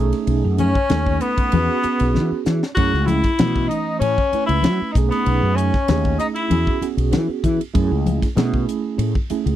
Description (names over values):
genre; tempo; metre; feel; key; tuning
electric jazz fusion; 96 BPM; 4/4; straight; F# dorian; A4 = 440 Hz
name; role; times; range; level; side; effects
tine electric piano; accompaniment; 0.0-9.6 s; E3 to B4; -24 LUFS; right 8 dB; medium tremolo, phaser
fretless electric bass; bass; 0.0-9.6 s; B1 to F#3; -20 LUFS; equal; lush chorus
crisp fusion drum kit; drums; 0.1-9.6 s; hi-hat, kick drum, ride cymbal, snare drum; -22 LUFS; equal; none
congas; percussion; 0.3-9.4 s; none; -24 LUFS; left 5 dB; none
clear tenor saxophone; melody; 0.6-6.9 s; B3 to F#4; -22 LUFS; left 1 dB; slapback echo
breathy tenor saxophone; second line; 0.6-6.9 s; B3 to F#4; -26 LUFS; left 6 dB; none
room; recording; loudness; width
little or no reverb; dry, close 1970s-style studio recording; -17 LUFS; side -12 dB against mid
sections
0.0-9.6 A section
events
drum fill 2.1-2.8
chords
0.0 B13; 1.5 E69; 2.8 F#m7; 4.9 B13; 6.5 E69; 7.7 F#m7 (rootless)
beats
| 0.28 0.90 1.52 2.15 | 2.77 3.39 4.01 4.64 | 5.26 5.88 6.50 7.12 | 7.74 8.37 8.99